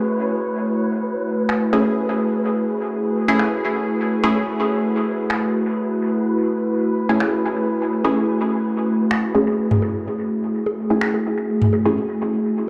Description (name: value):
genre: dub techno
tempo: 126 BPM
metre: 4/4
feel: swing 53% on 16ths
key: F# minor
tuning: A4 = 440 Hz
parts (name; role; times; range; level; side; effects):
- warbly tape-like pad; sustained chords; 0.0-12.7 s; A3 to C#5; -23 LUFS; equal; chorus, built-in reverb
- wind-like tuned noise texture; texture; 0.0-12.7 s; A3 to B4; -32 LUFS; equal; built-in reverb
- electronic finger snaps; drums; 1.5-11.1 s; none; -28 LUFS; equal; overdrive, low-pass filter on snare, low-pass filter on room, dub echo
- filtered dub chord stab; stabs; 1.7-12.0 s; A3 to G#4; -25 LUFS; equal; chorus, phaser, dub echo
- electronic toms and bongos; percussion; 9.7-11.8 s; none; -24 LUFS; equal; dub echo
room: moderate huge ambient reverb, RT60 4.1 s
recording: played on a big sound system in a bare room, large studio reverb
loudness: -20 LUFS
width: mono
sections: 0.0-12.7 A section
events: none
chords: 0.0 F#m9